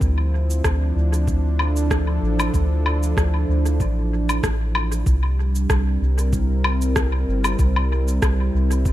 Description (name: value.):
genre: ambient dub.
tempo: 95 BPM.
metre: 4/4.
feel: swing 54% on 16ths.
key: unclear.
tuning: A4 = 441 Hz.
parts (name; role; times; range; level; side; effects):
warm analog pad; sustained chords; 0.0-8.9 s; F3 to C5; -26 LUFS; right 1 dB; chorus.
soft dub sub bass; bass; 0.0-8.9 s; G1 to D2; -20 LUFS; equal; none.
electronic cabasa, rim click and woodblock; drums; 0.0-8.9 s; none; -27 LUFS; left 1 dB; dub echo.
electronic kick drum; drums; 0.0-8.9 s; none; -22 LUFS; equal; none.
room: little or no reverb.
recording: none.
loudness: -18 LUFS.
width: side -14 dB against mid.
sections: 0.0-5.1 A section; 5.1-8.9 B section.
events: none.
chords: 0.0 Dm9; 5.1 C7.